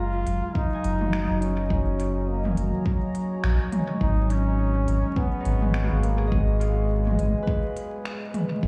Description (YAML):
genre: ambient dub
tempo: 104 BPM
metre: 4/4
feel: swing 59% on 16ths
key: G# dorian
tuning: A4 = 439 Hz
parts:
  - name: warm trombone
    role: melody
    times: 0.0-7.4 s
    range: G#3 to E#4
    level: -34 LUFS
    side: equal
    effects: dub echo
  - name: deep dark ambient pad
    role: sustained chords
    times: 0.0-8.7 s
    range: F#3 to A#5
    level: -33 LUFS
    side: equal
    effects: chorus, built-in reverb
  - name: Celtic harp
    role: arpeggios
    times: 0.0-8.7 s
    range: D#4 to A#5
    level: -39 LUFS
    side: equal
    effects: dub echo
  - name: soft dub sub bass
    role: bass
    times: 0.0-8.7 s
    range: F#1 to A#1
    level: -26 LUFS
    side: equal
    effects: none
  - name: organic electronic drum kit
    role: drums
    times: 0.3-8.5 s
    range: finger snaps, hi-hat, toms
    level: -33 LUFS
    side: equal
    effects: overdrive, dub echo
  - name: electronic kick drum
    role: drums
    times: 0.6-8.7 s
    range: none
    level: -28 LUFS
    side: equal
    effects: none
room: light reverb, digital ambience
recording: vinyl crackle, small room reverb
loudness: -25 LUFS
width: mono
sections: 0.0-8.7 A section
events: none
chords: 0.0 F#69; 4.0 G#m9